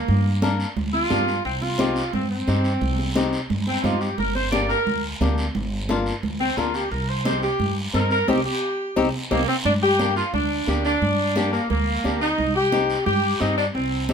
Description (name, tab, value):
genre	latin, cumbia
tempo	176 BPM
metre	4/4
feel	straight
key	G minor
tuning	A4 = 440 Hz
part	mellow saxophone section	melody	0.0-14.1 s	Bb3 to D5	-23 LUFS	equal	none
part	upright bass	bass	0.1-14.1 s	G1 to G2	-26 LUFS	equal	none
part	congas	percussion	0.1-14.1 s	none	-28 LUFS	right 2 dB	none
part	guiro	percussion	0.1-14.1 s	none	-33 LUFS	right 1 dB	none
part	flamenco guitar	accompaniment	0.4-14.1 s	Bb3 to Bb4	-25 LUFS	left 5 dB	none
room	moderate studio reverb, RT60 0.8 s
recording	minimal, uncompressed stereo recording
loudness	-20 LUFS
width	side -7 dB against mid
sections	0.0-9.7 A section; 9.7-14.1 B section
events	saxophone section solo 0.0-9.7; band accent 8.3-9.7; nylon-string guitar fill 9.1-9.7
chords	0.0 Gm; 1.5 Cm; 4.2 Gm; 6.9 Cm; 9.7 Gm; 12.4 Cm